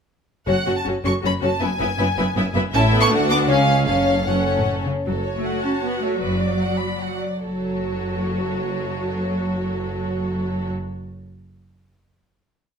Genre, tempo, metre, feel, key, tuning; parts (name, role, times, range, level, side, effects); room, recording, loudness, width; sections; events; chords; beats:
quick classical-period movement for string orchestra; 135-162 BPM; 3/4; rubato; F# minor; A4 = 440 Hz
clear studio violin section; melody; 0.5-10.7 s; C#5 to D6; -26 LUFS; equal
clear studio violin section; second line; 0.5-10.7 s; F#4 to B5; -27 LUFS; left 2 dB
clear studio viola section; accompaniment; 0.5-10.7 s; A3 to F#4; -25 LUFS; left 1 dB
clear studio double bass section; bass; 0.5-10.7 s; F#1 to D2; -26 LUFS; right 1 dB
rich studio cello section; bass; 0.5-10.7 s; C#2 to C#4; -26 LUFS; right 1 dB
wet stone room reverb, RT60 1.1 s; -19 LUFS; side -6 dB against mid
0.5-5.1 A section; 5.1-7.4 coda; 7.4-9.9 final chord
slowing down 4.5-7.4
0.5 F#m; 1.6 E/F#; 2.7 A; 3.1 D; 3.5 C#; 3.9 F#m; 6.2 Bm/F#
| 0.47 0.86 1.24 | 1.61 1.99 2.36 | 2.74 3.11 3.49 | 3.88 4.28 4.66 | 5.05 5.44 5.82 | 6.20 6.59 6.99 | 7.43 7.85 8.28 | 8.69 9.11 9.52